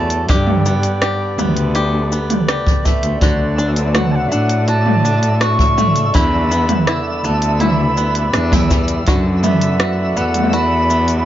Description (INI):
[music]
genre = folktronica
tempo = 82 BPM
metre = 4/4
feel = straight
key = unclear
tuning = A4 = 440 Hz
[part]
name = mellow wooden flute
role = melody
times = 0.0-11.3 s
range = D5 to C#6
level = -21 LUFS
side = right 1 dB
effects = tape echo
[part]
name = pedal harmonium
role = sustained chords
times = 0.0-11.3 s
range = F#3 to D5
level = -26 LUFS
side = equal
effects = vintage 12-bit sampler grit
[part]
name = bluegrass banjo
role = arpeggios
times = 0.0-11.3 s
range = D3 to G4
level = -22 LUFS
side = equal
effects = tape echo
[part]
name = dark cello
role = bass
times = 0.0-11.3 s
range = D2 to A2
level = -17 LUFS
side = equal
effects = none
[part]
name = organic electronic drum kit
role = drums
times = 0.1-11.2 s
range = hi-hat, rim click, shaker, toms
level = -19 LUFS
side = equal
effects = overdrive
[part]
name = kick drum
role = drums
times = 0.3-9.2 s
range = none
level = -16 LUFS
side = equal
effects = none
[part]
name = twinkling granular texture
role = texture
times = 3.4-11.3 s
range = E5 to E6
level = -29 LUFS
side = equal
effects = built-in reverb
[sound]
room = light reverb, small room ambience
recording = nothing above 7.5 kHz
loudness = -13 LUFS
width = side -12 dB against mid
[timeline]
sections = 0.0-11.3 A section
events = none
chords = 0.3 Gadd9; 3.2 D; 6.1 Em7; 9.1 Bm7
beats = | 0.29 1.02 1.75 2.48 | 3.22 3.95 4.68 5.41 | 6.14 6.87 7.61 8.34 | 9.07 9.80 10.53